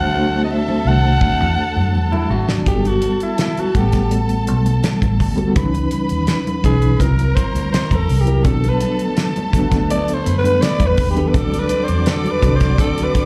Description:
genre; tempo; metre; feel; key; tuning
lush 1970s-style soul; 83 BPM; 4/4; straight; G major; A4 = 445 Hz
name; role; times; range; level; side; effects
raspy alto saxophone; melody; 0.0-13.3 s; E4 to F#5; -24 LUFS; equal; slapback echo
rich studio violin section; second line; 0.0-13.3 s; A4 to D6; -30 LUFS; equal; slapback echo
mellow reed electric piano; accompaniment; 0.0-13.3 s; E3 to F#5; -24 LUFS; equal; fast tremolo, slapback echo
phased string machine; sustained chords; 0.0-2.6, 8.5-13.3 s; D3 to F#5; -32 LUFS; equal; none
vintage muted fingered electric bass; bass; 0.0-13.1 s; G1 to F#2; -21 LUFS; equal; none
congas; percussion; 0.1-13.1 s; none; -30 LUFS; equal; none
damped 70s drum kit; drums; 1.2-13.3 s; hi-hat, kick drum, snare drum; -21 LUFS; equal; none
electric guitar through a small old amp; riff; 2.1-2.8 s; F#3 to F#4; -26 LUFS; equal; slapback echo
room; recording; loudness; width
light reverb; live gig heard through the venue's PA, club reverb; -17 LUFS; mono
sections
0.0-2.7 A section; 2.7-13.3 B section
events
drum fill 0.0-2.7; alto saxophone solo 2.7-13.3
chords
0.0 D7; 2.7 Gmaj9; 5.6 C#m9; 7.0 C7#11; 8.4 Bm7; 11.3 D7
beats
0.50 1.22 1.94 | 2.66 3.39 4.11 4.83 | 5.56 6.28 7.00 7.72 | 8.45 9.17 9.89 10.62 | 11.34 12.06 12.79

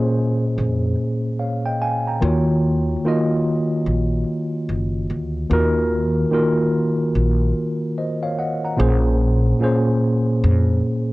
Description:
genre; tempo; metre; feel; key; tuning
lo-fi hip hop; 73 BPM; 4/4; swing 62% on 16ths; unclear; A4 = 443 Hz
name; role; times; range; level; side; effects
tine electric piano; accompaniment; 0.0-11.1 s; A#2 to A#5; -19 LUFS; equal; medium stereo tremolo
upright bass; bass; 0.6-10.8 s; F#1 to E#2; -20 LUFS; equal; none
room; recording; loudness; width
light reverb; cassette tape; -17 LUFS; side -20 dB against mid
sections
0.0-11.1 A section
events
none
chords
0.0 A#m7; 2.2 D#m7; 8.8 A#m7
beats
0.57 1.39 | 2.21 3.04 3.86 4.68 | 5.50 6.32 7.14 7.97 | 8.79 9.61 10.43

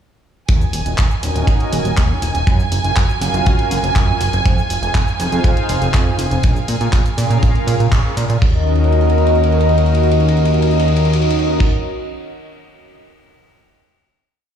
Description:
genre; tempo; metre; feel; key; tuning
nu-disco, nu disco; 121 BPM; 4/4; straight; Eb minor; A4 = 440 Hz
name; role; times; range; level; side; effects
warm analog pad; accompaniment; 0.5-11.7 s; Db4 to F5; -20 LUFS; right 2 dB; chorus, analog delay
rich studio violin section; sustained chords; 0.5-8.4 s; Ab5; -23 LUFS; right 4 dB; sidechain pumping
chorused synth bass; bass; 0.5-11.7 s; Eb1 to Bb2; -16 LUFS; left 1 dB; sidechain pumping
damped 70s drum kit; drums; 0.5-11.7 s; crash cymbal, kick drum, ride cymbal; -17 LUFS; equal; studio reverb
pop drum kit; drums; 0.5-8.4 s; handclaps, hi-hat, ride cymbal, shaker; -26 LUFS; equal; studio reverb
room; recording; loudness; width
light reverb, small room ambience; played on a big sound system in a bare room, large studio reverb, studio ambience; -13 LUFS; side -8 dB against mid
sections
0.5-8.4 drop; 8.4-12.4 final chord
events
drop 0.5-8.4; band accent 7.9; drum fill 8.7-11.6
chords
0.5 Ebm7; 2.5 Gbmaj7; 4.5 Fm7; 6.4 Bbm7; 8.4 Ebm7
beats
| 0.48 0.98 1.48 1.97 | 2.47 2.96 3.46 3.96 | 4.45 4.95 5.44 5.94 | 6.44 6.93 7.43 7.92 | 8.42 8.91 9.41 9.91 | 10.40 10.90 11.39

